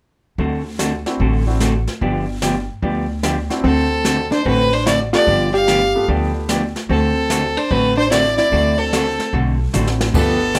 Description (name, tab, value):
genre	country, western swing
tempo	148 BPM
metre	4/4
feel	swing 66% on 8ths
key	D mixolydian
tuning	A4 = 443 Hz
part	vintage hollow-body jazz guitar	accompaniment	0.4-10.6 s	D3 to A4	-24 LUFS	equal	none
part	upright bass	bass	0.4-10.6 s	G1 to D2	-24 LUFS	equal	none
part	jazz brush drum kit	drums	0.4-10.6 s	brushed snare drum, crash cymbal, hi-hat, kick drum, snare drum, toms	-26 LUFS	equal	none
part	clear upright piano	accompaniment	1.1-10.4 s	A3 to G4	-27 LUFS	equal	none
part	rich fiddle	melody	3.6-10.6 s	A4 to F5	-21 LUFS	equal	plate reverb
part	hollow-body jazz guitar	second line	3.6-10.6 s	B3 to G4	-23 LUFS	equal	none
room	moderate studio ambience, RT60 0.5 s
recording	none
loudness	-18 LUFS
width	mono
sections	0.4-3.6 A section; 3.6-10.6 B section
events	drum fill 9.7-10.1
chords	0.4 D9; 2.0 G7; 3.6 D7; 5.3 G9; 6.9 D9